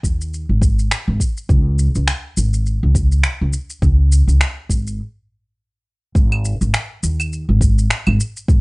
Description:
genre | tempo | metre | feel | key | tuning
organic downtempo | 103 BPM | 4/4 | swing 56% on 16ths | unclear | A4 = 440 Hz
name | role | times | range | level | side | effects
upright bass | bass | 0.0-8.6 s | G#1 to D#2 | -16 LUFS | equal | none
electronic kick drum | drums | 0.0-8.6 s | none | -15 LUFS | equal | small room ambience
electronic shaker, finger snaps and claves | drums | 0.0-8.6 s | none | -22 LUFS | equal | small room ambience
room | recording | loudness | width
little or no reverb | rough home demo mix, nothing above 10.4 kHz | -15 LUFS | side -28 dB against mid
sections
0.0-6.2 A section; 6.2-8.6 B section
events
stop 5.0-6.2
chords
none

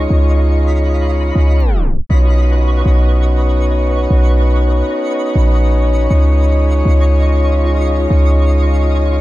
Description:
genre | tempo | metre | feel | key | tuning
hip hop | 120 BPM | 4/4 | half-time | B lydian | A4 = 440 Hz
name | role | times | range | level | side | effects
mellow French horn section | sustained chords | 0.0-9.2 s | G#3 to C#5 | -18 LUFS | equal | none
warm 808-style bass | bass | 0.0-9.2 s | A#1 to C#2 | -12 LUFS | equal | none
twinkling granular texture | texture | 0.0-9.2 s | E#4 to C#6 | -25 LUFS | equal | built-in reverb
room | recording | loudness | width
little or no reverb | dark, warm production, tape stop | -11 LUFS | side -17 dB against mid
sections
0.0-2.1 A section; 2.1-9.2 B section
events
tape stop 1.6-2.1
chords
0.0 C#add9; 2.1 Badd9; 6.1 C#add9

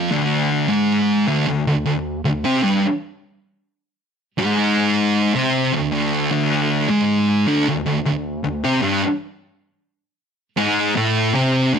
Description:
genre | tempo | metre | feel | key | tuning
metal | 77 BPM | 4/4 | straight | unclear | A4 = 440 Hz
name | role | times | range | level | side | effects
thick fuzz guitar | solo | 0.0-11.8 s | D2 to C4 | -16 LUFS | equal | distortion
room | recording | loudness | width
light reverb, digital ambience | none | -17 LUFS | side -7 dB against mid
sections
0.0-11.8 A section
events
none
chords
0.1 D5

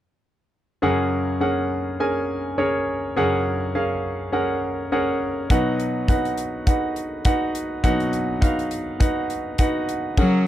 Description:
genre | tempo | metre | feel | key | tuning
piano-driven pop | 103 BPM | 4/4 | swing 56% on 16ths | F# major | A4 = 440 Hz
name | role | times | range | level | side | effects
clear concert grand piano | accompaniment | 0.8-10.5 s | F#2 to G#5 | -21 LUFS | equal | none
modern studio drum kit | drums | 5.5-10.3 s | crash cymbal, hi-hat, kick drum | -20 LUFS | equal | none
clear cello | melody | 10.2-10.5 s | F#3 | -18 LUFS | left 1 dB | none
room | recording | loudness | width
little or no reverb | dry, close 1970s-style studio recording | -20 LUFS | side -12 dB against mid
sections
0.8-10.2 A section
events
none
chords
0.8 F#add9; 5.5 B

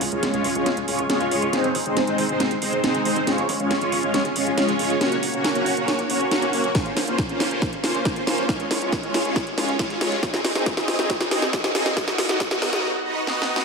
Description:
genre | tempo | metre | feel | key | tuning
uplifting trance | 138 BPM | 4/4 | straight | Db major | A4 = 440 Hz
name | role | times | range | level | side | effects
tight sequencer bass | bass | 0.0-12.8 s | Gb1 to Db2 | -37 LUFS | equal | none
house drum kit | drums | 0.0-13.6 s | hi-hat, snare drum | -24 LUFS | equal | sidechain pumping on hats
filtered supersaw swell | sustained chords | 0.1-13.6 s | Ab3 to Eb5 | -22 LUFS | equal | phaser, sidechain pumping
electronic kick drum | drums | 6.8-12.5 s | none | -26 LUFS | equal | none
room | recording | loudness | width
wet lush hall reverb, RT60 1.5 s | dreamy mix soaked in reverb, high-pass filter | -20 LUFS | side -4 dB against mid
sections
0.0-13.6 A section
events
build-up 0.0-13.6; drum fill 0.0-12.8, 13.3-13.6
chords
0.0 Db; 1.5 Ab; 3.3 Db/Ab; 5.0 Gb; 6.8 Bbmadd9; 8.5 Db; 10.2 Ab; 12.0 Cb

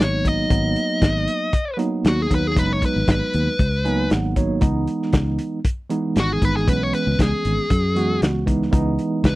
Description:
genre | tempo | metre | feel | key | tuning
straight-eighth soul blues | 117 BPM | 4/4 | straight | G# minor | A4 = 440 Hz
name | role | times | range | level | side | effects
dark smooth lead guitar | melody | 0.0-9.4 s | F#4 to D#5 | -23 LUFS | left 2 dB | overdrive
tine electric piano | accompaniment | 0.0-9.4 s | E3 to G#5 | -23 LUFS | right 3 dB | medium tremolo
fingered electric bass | bass | 0.0-9.4 s | F#1 to F#2 | -22 LUFS | equal | none
warm soul drum kit | drums | 0.0-9.4 s | hi-hat, kick drum, snare drum | -20 LUFS | equal | none
room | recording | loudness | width
little or no reverb | dry, close 1970s-style studio recording | -18 LUFS | side -19 dB against mid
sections
0.0-9.4 A section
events
tine electric piano fill 3.6-4.6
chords
0.0 G#m7; 4.6 C#m7

